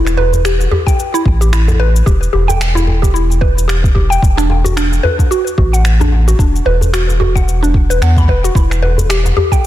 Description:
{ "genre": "organic downtempo", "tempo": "111 BPM", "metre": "4/4", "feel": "swing 57% on 16ths", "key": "E minor", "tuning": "A4 = 440 Hz", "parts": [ { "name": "mallet-like synth pluck", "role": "arpeggios", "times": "0.0-9.7 s", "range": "D4 to B5", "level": "-17 LUFS", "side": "equal", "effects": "chorus, phaser, ping-pong delay" }, { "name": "round analog bass", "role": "bass", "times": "0.0-9.3 s", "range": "E1 to E2", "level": "-12 LUFS", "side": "equal", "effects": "none" }, { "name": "electronic finger snaps and shaker", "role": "drums", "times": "0.1-9.7 s", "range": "none", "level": "-23 LUFS", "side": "left 1 dB", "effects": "soft clipping on snare" }, { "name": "djembe", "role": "percussion", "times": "0.2-9.6 s", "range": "none", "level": "-20 LUFS", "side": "left 1 dB", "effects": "none" }, { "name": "electronic kick drum", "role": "drums", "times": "0.9-9.6 s", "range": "none", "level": "-13 LUFS", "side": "equal", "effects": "none" } ], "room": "digital ambience", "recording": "dense, heavily limited modern master", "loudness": "-10 LUFS", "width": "side -13 dB against mid", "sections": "0.0-9.7 A section", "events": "none", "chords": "0.0 Em; 4.2 Bm/E; 8.6 Em" }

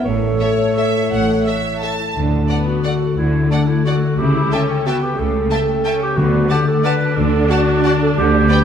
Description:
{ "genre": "classical", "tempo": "162-196 BPM", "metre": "3/4", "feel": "rubato", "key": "D major", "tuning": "A4 = 442 Hz", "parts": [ { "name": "dark cor anglais", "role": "second line", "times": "0.0-2.0 s", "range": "C#5", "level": "-24 LUFS", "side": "right 2 dB", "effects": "none" }, { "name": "mellow clarinet", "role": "second line", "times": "0.0-8.6 s", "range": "D4 to B4", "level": "-20 LUFS", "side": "right 1 dB", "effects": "none" }, { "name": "mellow hollow concert flute", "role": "second line", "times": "0.0-1.8 s", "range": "A4", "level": "-27 LUFS", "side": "right 1 dB", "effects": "none" }, { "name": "dark French horn section", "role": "sustained chords", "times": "0.0-1.8 s", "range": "A3", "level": "-22 LUFS", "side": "left 1 dB", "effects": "none" }, { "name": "concert harp", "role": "arpeggios", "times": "0.0-8.6 s", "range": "A2 to G5", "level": "-21 LUFS", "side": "left 7 dB", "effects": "none" }, { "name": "rich symphonic cello section", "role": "bass", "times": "0.1-8.5 s", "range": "A2 to D3", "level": "-24 LUFS", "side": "right 2 dB", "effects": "none" }, { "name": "rich symphonic double bass section", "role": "bass", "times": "0.1-8.5 s", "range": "A1 to D2", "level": "-22 LUFS", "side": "right 3 dB", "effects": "none" }, { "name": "warm symphonic violin section", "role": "melody", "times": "0.4-8.6 s", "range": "E5 to A5", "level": "-31 LUFS", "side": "left 2 dB", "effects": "none" }, { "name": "clear symphonic violin section", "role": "second line", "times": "0.4-8.6 s", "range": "B4 to A5", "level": "-26 LUFS", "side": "left 1 dB", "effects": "none" }, { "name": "warm studio viola section", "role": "accompaniment", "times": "0.4-8.6 s", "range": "A3 to A4", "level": "-24 LUFS", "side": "right 3 dB", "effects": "none" }, { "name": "timpani", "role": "percussion", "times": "6.2-6.6 s", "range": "D3", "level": "-22 LUFS", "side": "left 1 dB", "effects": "none" } ], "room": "wet scoring stage reverb, RT60 2.0 s", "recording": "none", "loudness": "-14 LUFS", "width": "side -8 dB against mid", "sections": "0.0-2.2 A section; 2.2-8.6 B section", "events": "none", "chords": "0.1 A; 2.2 D; 4.2 A7/C#; 6.2 D" }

